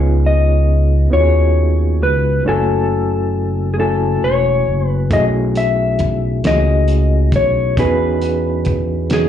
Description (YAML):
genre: slow six-eight R&B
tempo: 45 BPM (dotted quarters)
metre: 6/8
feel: straight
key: F# dorian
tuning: A4 = 440 Hz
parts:
  - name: overdriven reed electric piano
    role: accompaniment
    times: 0.0-9.3 s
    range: G#3 to G#5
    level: -20 LUFS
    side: right 1 dB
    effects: fast tremolo, slapback echo
  - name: smooth gliding synth bass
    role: bass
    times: 0.0-9.3 s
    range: E1 to E2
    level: -16 LUFS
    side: equal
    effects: none
  - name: mellow electric guitar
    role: melody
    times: 0.3-9.3 s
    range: G#4 to E5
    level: -18 LUFS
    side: left 2 dB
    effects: slapback echo
  - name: cloth-damped thuddy drum kit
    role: drums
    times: 5.1-9.3 s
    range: hi-hat, kick drum, snare drum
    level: -20 LUFS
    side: equal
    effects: none
room: little or no reverb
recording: live gig heard through the venue's PA, club reverb, nothing above 10.4 kHz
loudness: -13 LUFS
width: side -10 dB against mid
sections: 0.0-9.3 A section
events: none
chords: 0.0 C#9; 2.4 F#m9; 5.1 B13sus4; 7.8 Emaj13